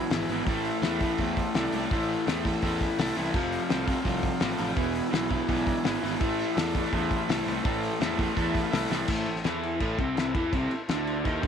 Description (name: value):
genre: garage rock duo or trio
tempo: 167 BPM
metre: 4/4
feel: straight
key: A harmonic minor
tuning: A4 = 443 Hz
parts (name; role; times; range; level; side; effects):
- combo organ; sustained chords; 0.0-11.5 s; E4 to C6; -35 LUFS; right 1 dB; none
- crunchy overdriven guitar; riff; 0.0-11.5 s; E2 to E4; -28 LUFS; left 1 dB; none
- fuzz picked electric bass; bass; 0.1-11.5 s; E1 to E2; -34 LUFS; right 1 dB; overdrive, tube saturation
- cloth-damped thuddy drum kit; drums; 0.1-11.5 s; crash cymbal, hi-hat, kick drum, snare drum; -30 LUFS; left 2 dB; none
room: moderate spring reverb, RT60 1.6 s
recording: 1960s-style stereo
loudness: -25 LUFS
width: side -8 dB against mid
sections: 0.0-9.1 A section; 9.1-11.5 B section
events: transistor combo organ fill 2.6-3.4, 8.0-9.1, 11.3; drum fill 8.9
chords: 0.5 Am; 3.4 F; 4.8 E; 6.2 Am